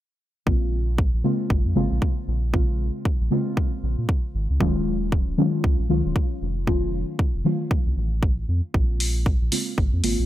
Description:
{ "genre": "deep house", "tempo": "116 BPM", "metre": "4/4", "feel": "swing 60% on 16ths", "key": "Bb minor", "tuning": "A4 = 440 Hz", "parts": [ { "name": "deep mellow chord stab", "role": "stabs", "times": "0.5-10.3 s", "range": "Db3 to F4", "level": "-25 LUFS", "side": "left 1 dB", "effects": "chorus, phaser, sidechain pumping, ping-pong delay" }, { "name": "round analog bass", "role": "bass", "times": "0.5-10.3 s", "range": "Eb1 to Bb2", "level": "-24 LUFS", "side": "equal", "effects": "sidechain pumping" }, { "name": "electronic kick drum", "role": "drums", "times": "0.5-9.9 s", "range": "none", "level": "-22 LUFS", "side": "equal", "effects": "none" }, { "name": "electronic hi-hat", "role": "drums", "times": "9.0-10.2 s", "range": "none", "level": "-27 LUFS", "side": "left 1 dB", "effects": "none" } ], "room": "light reverb", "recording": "bright 1980s-style digital production", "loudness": "-21 LUFS", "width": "side -14 dB against mid", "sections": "0.5-10.3 A section", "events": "none", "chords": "0.5 Bbm9; 4.6 Ebm11; 6.7 F7b9b13; 8.7 Bbm9", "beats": "| 0.47 0.98 1.50 2.02 | 2.54 3.05 3.57 4.09 | 4.61 5.12 5.64 6.16 | 6.67 7.19 7.71 8.23 | 8.74 9.26 9.78" }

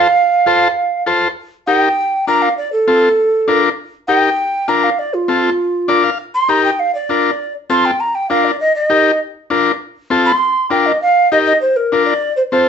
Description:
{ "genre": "latin", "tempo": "199 BPM", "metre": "4/4", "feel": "straight", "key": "Bb major", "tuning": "A4 = 439 Hz", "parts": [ { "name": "mellow hollow tenor recorder", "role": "melody", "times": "0.0-12.7 s", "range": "F4 to C6", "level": "-14 LUFS", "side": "right 2 dB", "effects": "none" }, { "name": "overdriven combo organ", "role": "accompaniment", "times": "0.0-12.7 s", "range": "C4 to F5", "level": "-14 LUFS", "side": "left 4 dB", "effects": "none" } ], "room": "wet studio reverb, RT60 0.6 s", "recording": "band playing live in one room, nothing above 8.0 kHz", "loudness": "-12 LUFS", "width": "side -7 dB against mid", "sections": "0.0-1.4 A section; 1.4-11.0 B section; 11.0-12.7 C section", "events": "recorder solo 1.4-11.0; transistor combo organ fill 5.7-6.2", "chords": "0.0 F; 1.4 Eb; 2.0 Bb; 2.6 F; 3.2 Bb; 3.8 Eb; 4.4 Bb; 5.0 F; 5.6 Bb; 6.2 Eb; 6.8 Bb; 7.4 F; 8.0 Bb; 8.6 Eb; 9.2 Bb; 9.8 F; 10.4 Bbadd9; 11.0 Eb; 11.6 Bb", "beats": "| 0.17 0.47 0.77 1.07 | 1.37 1.68 1.98 2.28 | 2.58 2.88 3.18 3.48 | 3.79 4.09 4.39 4.69 | 4.99 5.29 5.59 5.89 | 6.20 6.50 6.80 7.10 | 7.40 7.70 8.01 8.31 | 8.61 8.91 9.21 9.51 | 9.81 10.12 10.42 10.72 | 11.02 11.32 11.62 11.93 | 12.23 12.53" }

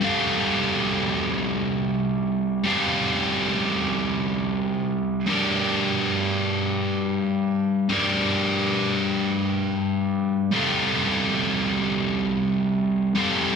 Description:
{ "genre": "rock", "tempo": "46 BPM (dotted quarters)", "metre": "6/8", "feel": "straight", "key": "unclear", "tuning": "A4 = 440 Hz", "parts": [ { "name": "sludgy distorted guitar", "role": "solo", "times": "0.0-13.6 s", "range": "G3 to F5", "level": "-21 LUFS", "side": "equal", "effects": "overdrive" } ], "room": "wet large studio reverb, RT60 0.9 s", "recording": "band playing live in one room", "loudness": "-21 LUFS", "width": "side -6 dB against mid", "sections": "0.0-13.6 A section", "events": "none", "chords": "0.0 F/G; 5.3 Gm; 10.5 F/G", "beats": "| 0.02 1.34 | 2.65 3.97 | 5.28 6.60 | 7.91 9.22 | 10.54 11.85 | 13.16" }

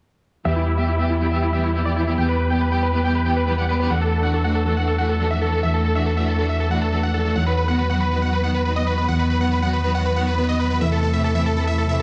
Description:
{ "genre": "trance", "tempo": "139 BPM", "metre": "4/4", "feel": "straight", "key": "E minor", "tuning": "A4 = 440 Hz", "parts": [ { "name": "big supersaw lead", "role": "melody", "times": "0.5-12.0 s", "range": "E4 to G5", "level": "-26 LUFS", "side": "equal", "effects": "vintage 12-bit sampler grit, low-pass filter, tape echo" }, { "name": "warm studio string section", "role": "sustained chords", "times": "0.5-12.0 s", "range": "C3 to G4", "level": "-26 LUFS", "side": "equal", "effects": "low-pass filter" }, { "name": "solid FM bass", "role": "bass", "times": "0.5-12.0 s", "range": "E2", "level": "-24 LUFS", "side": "equal", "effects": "none" } ], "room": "light reverb, small room ambience", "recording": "heavily compressed radio sound, multiband compression", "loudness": "-21 LUFS", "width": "mono", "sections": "0.5-12.0 A section", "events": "filter sweep on supersaw synth 0.5-12.0", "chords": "0.5 Em; 3.9 Dadd9/E; 7.4 B/E; 10.8 Am/E", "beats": "| 0.45 0.88 1.31 1.75 | 2.18 2.61 3.04 3.47 | 3.90 4.34 4.77 5.20 | 5.63 6.06 6.50 6.93 | 7.36 7.79 8.22 8.65 | 9.09 9.52 9.95 10.38 | 10.81 11.24 11.68" }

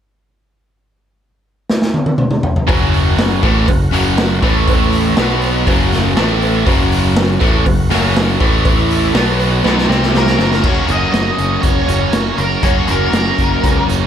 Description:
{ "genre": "classic rock", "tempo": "121 BPM", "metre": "4/4", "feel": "straight", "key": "unclear", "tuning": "A4 = 441 Hz", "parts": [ { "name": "raw garage drum kit", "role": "drums", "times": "1.7-14.0 s", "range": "crash cymbal, hi-hat, kick drum, snare drum, toms", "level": "-16 LUFS", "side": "equal", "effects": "none" }, { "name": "tonewheel organ", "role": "sustained chords", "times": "2.7-10.4 s", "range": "C4 to F#5", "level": "-28 LUFS", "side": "equal", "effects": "slow rotary speaker, overdrive, chorus vibrato" }, { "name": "biting overdriven guitar", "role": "riff", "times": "2.7-14.1 s", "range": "F#2 to C#4", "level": "-18 LUFS", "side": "right 12 dB", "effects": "spring reverb" }, { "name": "crunchy overdriven guitar", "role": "riff", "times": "2.7-14.1 s", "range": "F#2 to F#4", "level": "-19 LUFS", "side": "left 15 dB", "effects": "none" }, { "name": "modern bright picked electric bass", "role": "bass", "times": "2.7-14.0 s", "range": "F#1 to C#2", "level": "-18 LUFS", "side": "equal", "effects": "none" }, { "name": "cowbell", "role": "percussion", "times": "2.7-10.5 s", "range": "none", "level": "-28 LUFS", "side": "right 5 dB", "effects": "none" }, { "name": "octave-fuzz lead guitar", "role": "melody", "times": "10.2-13.8 s", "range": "A#4 to D#5", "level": "-19 LUFS", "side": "right 1 dB", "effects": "wah, distortion" } ], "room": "light reverb", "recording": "none", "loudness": "-11 LUFS", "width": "side -9 dB against mid", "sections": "0.7-2.7 A section; 2.7-10.6 B section; 10.6-14.1 C section", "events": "drum fill 1.7-2.7, 9.6-10.6", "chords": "0.7 N.C.; 2.7 F#; 4.4 A5; 5.2 B5; 5.7 F#; 6.2 A5; 6.7 F#; 8.4 A5; 9.1 B5; 9.9 C5; 10.4 F#", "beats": "| 0.70 1.20 1.69 2.19 | 2.69 3.18 3.68 4.18 | 4.67 5.17 5.67 6.16 | 6.66 7.16 7.66 8.15 | 8.65 9.15 9.65 10.14 | 10.64 11.14 11.64 12.14 | 12.64 13.14 13.64" }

